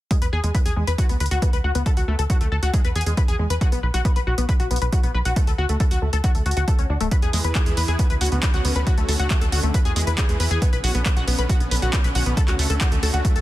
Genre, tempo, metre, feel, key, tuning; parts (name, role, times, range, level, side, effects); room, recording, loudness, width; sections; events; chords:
uplifting trance; 137 BPM; 4/4; straight; B dorian; A4 = 440 Hz
tight sequenced synth; arpeggios; 0.1-13.4 s; G#3 to B4; -26 LUFS; left 3 dB; chorus, sidechain pumping, tape echo
electronic kick drum; drums; 0.1-13.3 s; -20 LUFS; equal
punchy analog drum machine; drums; 0.1-13.4 s; handclaps, hi-hat; -29 LUFS; right 2 dB; sidechain pumping on hats
tight sequencer bass; bass; 0.2-13.4 s; D1 to E2; -22 LUFS; equal; sidechain pumping
supersaw pad; sustained chords; 7.1-13.4 s; D3 to B4; -30 LUFS; right 1 dB; sidechain pumping
little or no reverb; dense, heavily limited modern master; -18 LUFS; side -15 dB against mid
0.1-13.4 A section
0.1 E; 1.0 Bm/D; 1.9 D; 2.7 E; 3.6 B5; 5.4 D; 7.1 E; 8.0 Bmadd9/D; 8.9 Dmaj7; 9.7 E; 10.6 Bmadd9; 12.4 Dmaj7